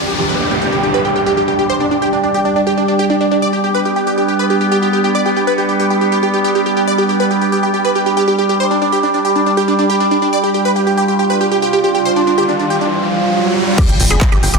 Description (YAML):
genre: psychedelic trance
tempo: 139 BPM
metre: 4/4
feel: straight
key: G major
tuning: A4 = 442 Hz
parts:
  - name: supersaw stab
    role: melody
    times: 0.0-14.6 s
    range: D4 to D6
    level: -16 LUFS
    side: right 1 dB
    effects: phaser, vintage 12-bit sampler grit, sidechain pumping, ping-pong delay
  - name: overtone-sweeping drone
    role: sustained chords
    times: 0.0-14.6 s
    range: G3 to G4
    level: -16 LUFS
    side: right 2 dB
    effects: chorus, built-in reverb, sidechain pumping
  - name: downlifter, riser and impact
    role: sound effects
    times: 0.0-3.4, 11.7-14.6 s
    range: none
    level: -20 LUFS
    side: equal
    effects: none
  - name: ethereal airy pad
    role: texture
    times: 0.0-12.9 s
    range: D4 to D6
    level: -21 LUFS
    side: equal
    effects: ensemble chorus, built-in reverb, sidechain pumping
  - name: woody wave-folded pluck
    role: riff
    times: 13.8-14.6 s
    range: G4 to Ab4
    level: -25 LUFS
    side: moving between left 4 dB and right 2 dB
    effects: chorus, auto-pan, sidechain pumping, ping-pong delay
  - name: electronic kick drum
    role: drums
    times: 13.8-14.3 s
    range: none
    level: -13 LUFS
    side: equal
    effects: overdrive
  - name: techno drum kit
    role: drums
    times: 13.8-14.6 s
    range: crash cymbal, handclaps, hi-hat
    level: -21 LUFS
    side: equal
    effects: none
  - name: tight sequencer bass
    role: bass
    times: 13.9-14.6 s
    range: G1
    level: -15 LUFS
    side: equal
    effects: tube saturation
room: wet lush hall reverb, RT60 1.9 s, digital ambience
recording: dense, heavily limited modern master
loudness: -12 LUFS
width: side -3 dB against mid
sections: 0.0-13.8 A section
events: riser 11.7-13.8; impact 13.8-14.6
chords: 0.0 G5